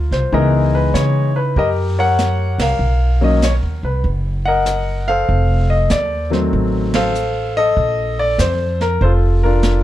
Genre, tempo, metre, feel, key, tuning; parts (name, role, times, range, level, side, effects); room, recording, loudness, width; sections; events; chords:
jazz piano trio; 97 BPM; 4/4; swing 66% on 8ths; A4 = 439 Hz
warm concert grand piano; melody; 0.0-9.8 s; D#3 to Gb5; -17 LUFS; left 2 dB
upright bass; bass; 0.0-9.8 s; F1 to Db3; -17 LUFS; equal
jazz brush drum kit; drums; 0.1-9.8 s; brushed snare drum, hi-hat, kick drum, ride cymbal, snare drum; -24 LUFS; right 2 dB
light reverb; dark, warm production; -14 LUFS; side -13 dB against mid
0.0-9.8 A section
band accent 2.5-2.8, 6.8-7.1
0.3 Dbm9; 1.6 Gb; 2.8 Bmaj7; 5.3 F7b9; 7.8 Bbmaj7